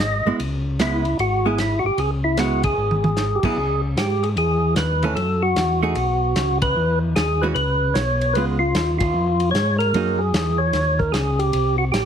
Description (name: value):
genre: soul jazz organ trio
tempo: 151 BPM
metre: 4/4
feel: swing 65% on 8ths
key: C# minor, C# dorian from 3.6 s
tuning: A4 = 439 Hz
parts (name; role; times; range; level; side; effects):
- percussive tonewheel organ; melody; 0.0-12.1 s; E4 to D#5; -21 LUFS; equal; slow rotary speaker, overdrive
- tonewheel organ; bass; 0.0-12.1 s; G#1 to G#2; -22 LUFS; equal; slow rotary speaker
- archtop guitar, miked and amplified; accompaniment; 0.3-10.2 s; E3 to G#4; -24 LUFS; right 4 dB; none
- warm soul drum kit; drums; 0.4-12.1 s; crash cymbal, hi-hat, kick drum, ride cymbal, snare drum, toms; -27 LUFS; equal; none
room: light reverb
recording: heavily compressed radio sound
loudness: -18 LUFS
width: side -8 dB against mid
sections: 0.0-3.6 A section; 3.6-12.1 B section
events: band accent 2.6, 6.6, 8.9; drum fill 2.8-3.2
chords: 0.4 C#m7; 2.8 G#m7; 3.6 C#m9; 5.2 F#m7; 6.0 Bsus2; 6.8 E6; 8.4 C#7; 9.9 F#69; 11.5 Fadd9 (rootless)